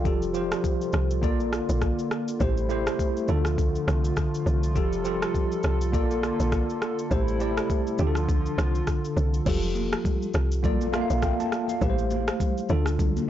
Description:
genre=afrobeats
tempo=102 BPM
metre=4/4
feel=swing 58% on 16ths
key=F major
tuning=A4 = 442 Hz
part: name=mellow tine electric piano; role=accompaniment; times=0.0-13.3 s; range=D3 to A5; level=-27 LUFS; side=equal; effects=medium stereo tremolo
part: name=hollow soft pad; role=sustained chords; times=0.0-9.5 s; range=C3 to A4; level=-33 LUFS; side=left 1 dB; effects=chorus
part: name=woody log drum bass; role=bass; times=0.0-13.2 s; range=F1 to D2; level=-26 LUFS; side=equal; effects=tube saturation
part: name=afro-pop drum kit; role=drums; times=0.1-13.3 s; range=crash cymbal, kick drum, rim click, shaker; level=-28 LUFS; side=equal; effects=soft clipping on snare
part: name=congas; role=percussion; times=9.5-13.3 s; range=none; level=-33 LUFS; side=left 4 dB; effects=none
room=light reverb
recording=blown-out, overdriven recording, overdrive, nothing above 7.7 kHz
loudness=-23 LUFS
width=side -11 dB against mid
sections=0.0-9.5 A section; 9.5-13.3 B section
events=none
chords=0.1 Fadd9; 1.2 Bbmaj7; 2.4 Am7; 3.3 Dm; 4.8 Fadd9; 5.9 Bbmaj7; 7.1 Am7; 8.0 Dm; 9.5 Fadd9; 10.6 Bbmaj7; 11.8 Am7; 12.7 Dm

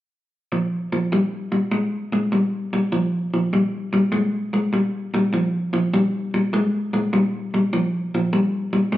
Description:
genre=blues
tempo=100 BPM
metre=4/4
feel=swing 67% on 8ths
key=unclear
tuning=A4 = 439 Hz
part: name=electric guitar through a small old amp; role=riff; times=0.5-9.0 s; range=Bb2 to Ab3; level=-19 LUFS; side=equal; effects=none
room=wet large studio reverb, RT60 1.3 s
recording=band playing live in one room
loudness=-19 LUFS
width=side -14 dB against mid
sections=0.5-9.0 A section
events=none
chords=0.5 Bb5

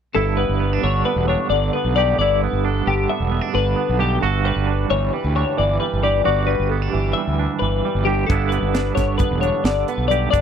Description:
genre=math rock and midwest emo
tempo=265 BPM (eighths)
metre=9/8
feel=straight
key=G lydian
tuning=A4 = 440 Hz
part: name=twangy electric guitar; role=accompaniment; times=0.1-10.4 s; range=G2 to G4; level=-22 LUFS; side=right 13 dB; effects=tremolo
part: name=twelve-string electric guitar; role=arpeggios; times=0.1-10.4 s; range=G4 to E5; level=-22 LUFS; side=left 9 dB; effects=analog chorus
part: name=fuzz fingered electric bass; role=bass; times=0.2-10.4 s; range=E1 to D2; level=-22 LUFS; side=equal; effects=overdrive
part: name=crisp fusion drum kit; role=drums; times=8.3-10.4 s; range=hi-hat, kick drum, snare drum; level=-20 LUFS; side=equal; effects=none
room=little or no reverb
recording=dry, close 1970s-style studio recording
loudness=-17 LUFS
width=side -8 dB against mid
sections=0.2-10.4 A section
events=none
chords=0.2 G6; 4.2 Em9/G; 8.3 G6

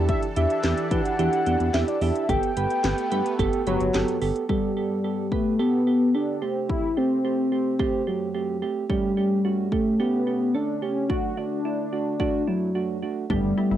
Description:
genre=synth-pop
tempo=109 BPM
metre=4/4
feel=straight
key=G major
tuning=A4 = 440 Hz
part: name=soft electric-piano-like synth keys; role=accompaniment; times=0.0-13.8 s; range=A3 to B4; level=-27 LUFS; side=right 6 dB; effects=chorus, cassette tape
part: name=lush unison pad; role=sustained chords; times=0.0-4.5 s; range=E3 to A4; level=-34 LUFS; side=left 2 dB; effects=chorus, phaser, cassette tape
part: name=smooth synth bass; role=bass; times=0.0-4.3, 13.3-13.8 s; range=G1 to E3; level=-26 LUFS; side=left 1 dB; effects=none
part: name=warm velvety synth lead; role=melody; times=0.1-13.8 s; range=F#3 to G5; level=-24 LUFS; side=left 2 dB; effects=chorus, cassette tape
part: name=house drum kit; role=drums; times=0.1-13.4 s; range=handclaps, hi-hat, kick drum, snare drum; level=-29 LUFS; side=left 1 dB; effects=cassette tape
part: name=resonant blip pluck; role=arpeggios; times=13.3-13.8 s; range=D4 to E4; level=-34 LUFS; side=left 9 dB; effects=chorus, cassette tape
room=moderate booth ambience, RT60 0.2 s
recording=home recording on cassette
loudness=-22 LUFS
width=side -11 dB against mid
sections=0.0-4.5 A section; 4.5-13.8 B section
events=none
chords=0.0 Em7; 2.3 Gadd9; 6.4 Am7; 8.9 A7; 11.1 D

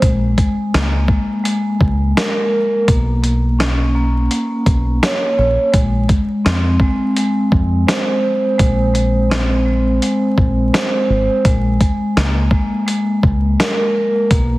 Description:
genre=hip hop, boom-bap hip-hop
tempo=84 BPM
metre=4/4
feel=swing 55% on 16ths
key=Bb minor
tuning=A4 = 439 Hz
part: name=vibraphone with soft mallets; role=accompaniment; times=0.0-14.6 s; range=Ab3 to C#5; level=-17 LUFS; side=equal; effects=high-pass filter, low-pass filter
part: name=deep dub fingered electric bass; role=bass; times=0.0-14.6 s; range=Ab1 to F2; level=-17 LUFS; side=equal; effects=none
part: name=dusty soul sampler-style drum kit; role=drums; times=0.0-14.5 s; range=hi-hat, kick drum, snare drum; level=-17 LUFS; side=equal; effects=none
room=light reverb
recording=heavily compressed radio sound, vinyl crackle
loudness=-13 LUFS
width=side -19 dB against mid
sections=0.0-14.6 A section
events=none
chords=0.0 Bbm7; 2.9 Bsus2; 5.7 Bbsus2; 11.4 Bbm7

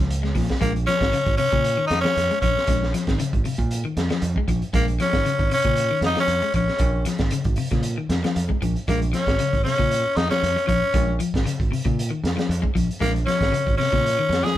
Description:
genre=afrobeat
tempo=116 BPM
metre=4/4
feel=swing 53% on 16ths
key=Bb minor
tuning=A4 = 440 Hz
part: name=electric guitar at the edge of break-up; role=arpeggios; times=0.0-14.6 s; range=C3 to Ab3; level=-27 LUFS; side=left 5 dB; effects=none
part: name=fingered electric bass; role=bass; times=0.0-14.6 s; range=Ab1 to Bb2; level=-25 LUFS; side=right 1 dB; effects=none
part: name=crunchy breakbeat drum kit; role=drums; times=0.1-14.6 s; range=hi-hat, kick drum, snare drum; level=-25 LUFS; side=right 1 dB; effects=none
part: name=growling tenor saxophone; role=melody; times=0.6-14.6 s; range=Bb3 to Ab4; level=-22 LUFS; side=left 1 dB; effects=none
room=light reverb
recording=band playing live in one room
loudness=-19 LUFS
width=side -13 dB against mid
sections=0.6-14.6 A section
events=none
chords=0.0 Bbm7

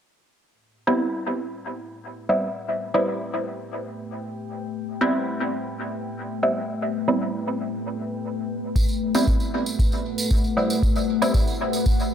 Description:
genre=dub techno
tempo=116 BPM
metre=4/4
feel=straight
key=A dorian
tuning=A4 = 440 Hz
part: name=deep dark ambient pad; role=sustained chords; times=1.9-12.1 s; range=A3 to G5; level=-28 LUFS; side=left 3 dB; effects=chorus, built-in reverb, vintage 12-bit sampler grit, sidechain pumping
part: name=filtered dub chord stab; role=stabs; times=0.9-12.1 s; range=G3 to E4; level=-24 LUFS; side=right 1 dB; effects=chorus, phaser, cassette tape, sidechain pumping, dub echo
part: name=electronic kick drum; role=drums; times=8.8-12.0 s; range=none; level=-21 LUFS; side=equal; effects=none
part: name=tambourine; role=percussion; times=8.8-12.1 s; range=none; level=-32 LUFS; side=right 4 dB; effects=dub echo
room=moderate spring reverb, RT60 2.0 s, digital ambience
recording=echo-heavy mix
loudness=-22 LUFS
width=side -9 dB against mid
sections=0.5-12.1 A section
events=none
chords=0.5 Am9

